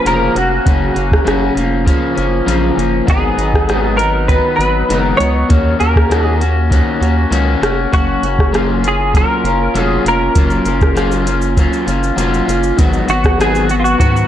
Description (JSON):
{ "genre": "indie pop, bedroom pop", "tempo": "99 BPM", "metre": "4/4", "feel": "straight", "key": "F# major", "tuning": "A4 = 441 Hz", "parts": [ { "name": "direct-recorded clean electric guitar", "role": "melody", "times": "0.0-14.3 s", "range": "E#4 to C#5", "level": "-17 LUFS", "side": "equal", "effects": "ensemble chorus, slapback echo" }, { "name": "electric guitar at the edge of break-up", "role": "accompaniment", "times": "0.0-14.3 s", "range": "F#2 to F#4", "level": "-16 LUFS", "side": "left 2 dB", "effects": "lush chorus, warbly pitch drift" }, { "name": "round analog bass", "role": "bass", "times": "0.1-14.2 s", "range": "E#1 to G#2", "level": "-17 LUFS", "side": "equal", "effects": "none" }, { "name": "soft vintage rhythm box", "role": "drums", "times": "0.1-14.3 s", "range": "hi-hat, kick drum, rim click, shaker", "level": "-15 LUFS", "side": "equal", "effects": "vintage 12-bit sampler grit" } ], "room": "light reverb", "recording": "none", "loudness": "-11 LUFS", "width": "side -11 dB against mid", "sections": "0.0-14.3 A section", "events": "none", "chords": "0.0 F#maj7; 3.1 G#m7; 5.5 D#m7; 7.9 F#maj7; 12.8 G#m7" }